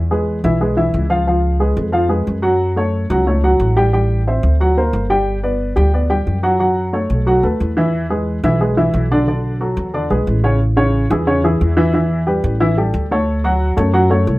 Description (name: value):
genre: Afro-Cuban jazz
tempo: 180 BPM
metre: 4/4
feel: straight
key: A major from 10.6 s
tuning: A4 = 440 Hz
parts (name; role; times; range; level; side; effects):
- upright bass; bass; 0.0-14.4 s; G1 to F#2; -17 LUFS; equal; none
- dark upright piano; accompaniment; 0.1-14.4 s; C#3 to G5; -16 LUFS; equal; none
room: light reverb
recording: close, detailed microphones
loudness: -14 LUFS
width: side -19 dB against mid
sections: 0.0-10.6 A section; 10.6-14.4 B section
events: none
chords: 0.0 E; 1.3 C#7; 2.6 F#m; 3.9 Am7; 4.6 Daug7; 5.3 G; 6.6 F#m; 7.3 B7; 7.9 E; 9.3 Bm7; 9.9 E6; 10.6 Amaj7; 11.9 Em; 12.6 A7; 13.3 Dmaj7